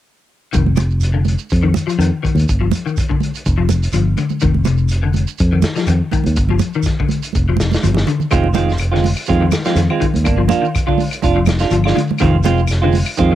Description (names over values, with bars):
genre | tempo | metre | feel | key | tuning
afrobeat | 123 BPM | 4/4 | swing 55% on 16ths | F dorian | A4 = 439 Hz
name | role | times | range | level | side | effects
electric guitar at the edge of break-up | arpeggios | 0.5-13.3 s | C3 to F3 | -20 LUFS | left 6 dB | ensemble chorus, cassette tape
fingered electric bass | bass | 0.5-13.3 s | F1 to F2 | -15 LUFS | equal | none
vintage drum kit | drums | 0.5-13.3 s | hi-hat, kick drum, snare drum | -21 LUFS | equal | cassette tape
shekere | percussion | 0.5-13.3 s | none | -25 LUFS | right 3 dB | none
congas | percussion | 0.7-13.1 s | none | -21 LUFS | right 10 dB | none
clean electric guitar | stabs | 8.3-13.3 s | Eb3 to F4 | -18 LUFS | right 7 dB | warbly pitch drift, cassette tape
claves | percussion | 8.3-13.2 s | none | -28 LUFS | left 12 dB | none
room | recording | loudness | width
small room ambience | home recording on cassette | -13 LUFS | side -12 dB against mid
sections
0.5-13.3 A section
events
drum fill 7.6-8.3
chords
0.5 F5; 2.5 G5; 4.4 F5; 6.4 G5; 8.3 Fm7; 10.3 Gm7; 12.2 Fm7